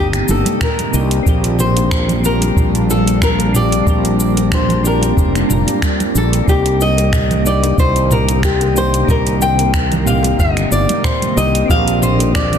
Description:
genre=sunset chillout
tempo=92 BPM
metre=4/4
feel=swing 55% on 16ths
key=C minor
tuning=A4 = 440 Hz
part: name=nylon-string guitar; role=melody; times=0.0-12.6 s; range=G4 to G5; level=-19 LUFS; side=left 2 dB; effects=digital delay, shimmer reverb
part: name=soft electric-piano-like synth keys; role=accompaniment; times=0.0-12.6 s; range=Bb3 to Bb4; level=-22 LUFS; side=left 1 dB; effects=chorus, tremolo, auto-pan, low-pass filter, tape echo, shimmer reverb
part: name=shimmering ambient pad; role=sustained chords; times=0.1-12.6 s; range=C3 to D4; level=-21 LUFS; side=left 1 dB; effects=chorus, built-in reverb, shimmer reverb
part: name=fretless electric bass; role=bass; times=0.0-12.6 s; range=F1 to C2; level=-16 LUFS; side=equal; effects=none
part: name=smooth R&B drum kit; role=drums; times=0.1-12.6 s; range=cabasa, finger snaps, hi-hat, toms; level=-21 LUFS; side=right 2 dB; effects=soft clipping on snare
part: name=congas and bongos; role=percussion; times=0.3-12.6 s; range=none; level=-25 LUFS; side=right 3 dB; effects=none
part: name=electronic kick drum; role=drums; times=0.6-12.5 s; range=none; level=-17 LUFS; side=equal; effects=none
room=light reverb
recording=dense, heavily limited modern master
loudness=-12 LUFS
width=side -8 dB against mid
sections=0.0-12.6 A section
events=none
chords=0.0 Cm7; 1.3 Bb6; 6.5 Cm7; 11.7 Bb6

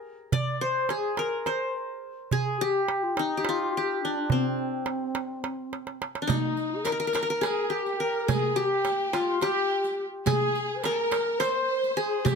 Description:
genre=Turkish makam ensemble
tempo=211 BPM (eighths)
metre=7/8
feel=straight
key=C makam nihavent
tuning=A4 = 441 Hz
part: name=qanun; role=melody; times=0.0-12.4 s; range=C4 to D5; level=-27 LUFS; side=left 2 dB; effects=none
part: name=breathy mellow low ney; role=second line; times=0.3-12.4 s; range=C4 to D5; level=-32 LUFS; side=left 2 dB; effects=none
part: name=darbuka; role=percussion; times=0.3-12.4 s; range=none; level=-29 LUFS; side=right 5 dB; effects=none
part: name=dark symphonic violin section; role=second line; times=6.3-12.4 s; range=Eb4 to C5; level=-34 LUFS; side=right 1 dB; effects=none
part: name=riq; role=percussion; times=6.3-12.4 s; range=none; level=-36 LUFS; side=right 6 dB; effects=none
room=light reverb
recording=close, detailed microphones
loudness=-25 LUFS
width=side -5 dB against mid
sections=0.0-6.3 A section; 6.3-12.4 B section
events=drum fill 5.7-6.3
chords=none

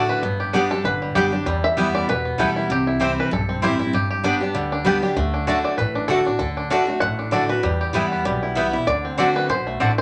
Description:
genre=bluegrass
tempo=194 BPM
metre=4/4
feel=swing 56% on 8ths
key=G major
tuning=A4 = 440 Hz
part: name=bluegrass banjo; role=melody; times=0.0-10.0 s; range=D3 to F#5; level=-26 LUFS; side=equal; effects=none
part: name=picked steel-string acoustic guitar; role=accompaniment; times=0.0-10.0 s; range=E2 to G4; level=-24 LUFS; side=equal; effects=none
part: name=mandolin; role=stabs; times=0.0-9.9 s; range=A3 to A5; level=-27 LUFS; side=equal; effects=none
part: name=upright bass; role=bass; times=0.0-10.0 s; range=F#1 to F#2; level=-32 LUFS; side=equal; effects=none
room=wet club reverb, RT60 0.7 s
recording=none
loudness=-21 LUFS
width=mono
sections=0.0-1.5 A section; 1.5-10.0 A section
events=five-string banjo solo 0.0-10.0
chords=0.2 G; 1.5 Em; 2.7 C; 3.9 G; 5.2 D; 7.6 Em; 8.9 D7

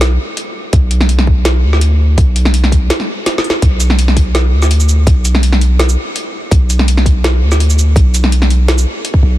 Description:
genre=half-time drum and bass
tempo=166 BPM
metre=4/4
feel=half-time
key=B minor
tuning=A4 = 444 Hz
part: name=long sustained 808-style bass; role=bass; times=0.0-9.4 s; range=B1 to D2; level=-10 LUFS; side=equal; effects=none
part: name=drum and bass drum kit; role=drums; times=0.0-9.1 s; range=hi-hat, shaker, snare drum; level=-16 LUFS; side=equal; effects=soft clipping on snare
part: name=electronic kick drum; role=drums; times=0.7-9.2 s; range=none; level=-10 LUFS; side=equal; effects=none
room=little or no reverb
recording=dense, heavily limited modern master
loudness=-9 LUFS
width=side -15 dB against mid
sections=0.0-9.4 A section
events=break 2.9-3.6; drum fill 3.3-3.6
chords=none

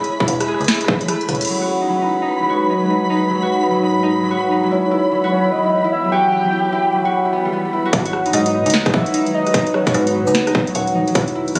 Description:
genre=IDM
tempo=149 BPM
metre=4/4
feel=swing 62% on 16ths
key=G# phrygian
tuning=A4 = 442 Hz
part: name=glassy FM pad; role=sustained chords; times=0.0-11.6 s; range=E2 to C#5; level=-27 LUFS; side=equal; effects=ensemble chorus, built-in reverb, phaser
part: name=concert harp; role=arpeggios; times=0.0-11.6 s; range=F#3 to G#4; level=-22 LUFS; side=equal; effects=low-pass filter, dub echo
part: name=booming analog drum machine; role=drums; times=0.0-1.6, 7.9-11.6 s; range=congas, crash cymbal, hi-hat, rim click, shaker, snare drum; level=-24 LUFS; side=equal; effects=none
part: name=flickering grainy texture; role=texture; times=0.0-7.9 s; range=B5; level=-27 LUFS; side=equal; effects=built-in reverb
part: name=electronic kick drum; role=drums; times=0.2-1.0, 7.9-11.3 s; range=none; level=-21 LUFS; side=equal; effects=distortion, overdrive
part: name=metallic FM bass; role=bass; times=0.3-1.4, 7.9-11.6 s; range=D#1 to G#2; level=-26 LUFS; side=equal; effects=none
part: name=warbly nostalgic lead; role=melody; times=4.7-10.7 s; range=B4 to G5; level=-22 LUFS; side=equal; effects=chorus, delay
room=moderate echo chamber reverb, RT60 1.7 s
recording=recorded on a phone in the room, studio ambience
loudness=-17 LUFS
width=mono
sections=0.0-1.5 A section; 1.5-7.9 B section; 7.9-11.6 C section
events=drum fill 1.3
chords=0.0 Amaj7; 1.5 G#m7; 4.7 Emadd9; 7.9 G#m7

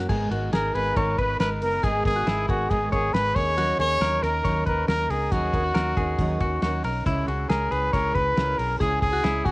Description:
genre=jangly indie pop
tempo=138 BPM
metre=4/4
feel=straight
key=G# minor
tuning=A4 = 440 Hz
part: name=picked steel-string acoustic guitar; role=accompaniment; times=0.0-9.5 s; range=G#2 to A#4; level=-31 LUFS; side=right 2 dB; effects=cassette tape
part: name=clean electric guitar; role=arpeggios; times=0.0-9.5 s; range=E4 to C#5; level=-30 LUFS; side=left 2 dB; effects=cassette tape
part: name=vintage muted fingered electric bass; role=bass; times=0.0-9.5 s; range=F#1 to D#2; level=-29 LUFS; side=equal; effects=none
part: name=cloth-damped thuddy drum kit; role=drums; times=0.1-9.5 s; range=crash cymbal, hi-hat, kick drum, ride cymbal, snare drum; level=-28 LUFS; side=equal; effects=cassette tape
part: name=breathy trumpet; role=melody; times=0.5-9.5 s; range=F#4 to C#5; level=-24 LUFS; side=equal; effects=cassette tape
room=light reverb, small room reverb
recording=home recording on cassette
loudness=-21 LUFS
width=side -22 dB against mid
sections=0.1-9.5 A section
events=none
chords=0.1 G#madd9; 3.4 D#m7; 7.1 C#m

